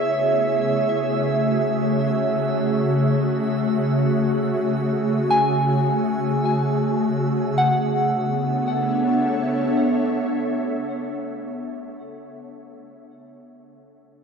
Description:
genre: ambient.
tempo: free time.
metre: none.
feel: none.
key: B dorian.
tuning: A4 = 440 Hz.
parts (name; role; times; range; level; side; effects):
ethereal airy pad; sustained chords; 0.0-11.8 s; C#3 to E5; -21 LUFS; equal; ensemble chorus, built-in reverb.
soft synth bell; arpeggios; 0.0-14.2 s; E5 to G#5; -25 LUFS; equal; chorus, ping-pong delay.
drifting glass-harmonics texture; texture; 0.0-7.6 s; E6; -39 LUFS; right 5 dB; chorus, built-in reverb.
room: wet cathedral reverb, RT60 6.6 s.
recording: dark, warm production.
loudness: -19 LUFS.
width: side -6 dB against mid.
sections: 0.0-7.6 A section; 7.6-12.0 B section.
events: none.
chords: 0.0 F#m9/C#; 7.6 Bm11.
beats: free time.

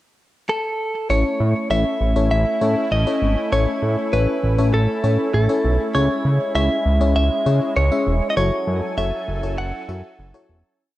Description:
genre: synth-pop.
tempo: 99 BPM.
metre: 4/4.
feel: straight.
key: unclear.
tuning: A4 = 440 Hz.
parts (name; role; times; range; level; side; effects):
direct-recorded clean electric guitar; melody; 0.5-10.5 s; A4 to F#5; -22 LUFS; equal; tape echo.
FM electric piano; accompaniment; 1.1-10.6 s; C#4 to E5; -24 LUFS; left 4 dB; chorus.
sweeping resonant pad; sustained chords; 1.1-10.8 s; F#3 to G#5; -27 LUFS; right 2 dB; chorus.
fat analog bass; bass; 1.1-10.6 s; E1 to C#3; -19 LUFS; equal; none.
room: light reverb, digital ambience.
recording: dark, warm production.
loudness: -17 LUFS.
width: side -15 dB against mid.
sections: 0.0-1.1 pickup bar; 1.1-10.8 chorus.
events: fade-out 8.4-10.8.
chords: 0.0 N.C.; 1.1 A; 5.9 C#m; 8.4 F#m7.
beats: 0.49 | 1.10 1.70 2.31 2.92 | 3.52 4.13 4.73 5.34 | 5.95 6.55 7.16 7.76 | 8.37 8.98 9.58 10.19.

